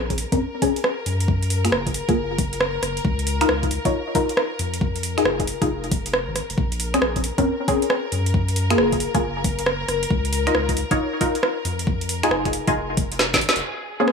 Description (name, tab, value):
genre	UK garage, two-step garage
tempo	136 BPM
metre	4/4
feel	swing 65% on 16ths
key	unclear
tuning	A4 = 444 Hz
part	rich studio violin section	sustained chords	0.0-14.1 s	Ab4 to Bb4	-30 LUFS	left 4 dB	sidechain pumping, low-pass filter
part	soft dub sub bass	bass	0.0-13.6 s	F1 to Gb2	-26 LUFS	equal	tube saturation
part	electronic kick drum	drums	0.1-13.4 s	none	-24 LUFS	left 1 dB	overdrive
part	garage drum kit	drums	0.1-14.1 s	finger snaps, hi-hat, rim click, snare drum	-24 LUFS	right 1 dB	overdrive
part	punchy chord stab	stabs	0.3-14.1 s	Bb3 to Db5	-22 LUFS	left 1 dB	chorus, tape echo
room	moderate spring reverb, RT60 1.5 s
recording	echo-heavy mix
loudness	-19 LUFS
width	side -5 dB against mid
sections	0.0-13.6 A section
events	filter sweep on synth stab 0.0-13.6; drum fill 13.2-13.6; band accent 13.5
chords	0.0 Bbm9; 1.1 Gbmaj9; 3.0 Db69; 4.6 Fm7; 6.6 Bbm9; 8.1 Gbmaj9; 10.1 Db69; 11.7 Fm7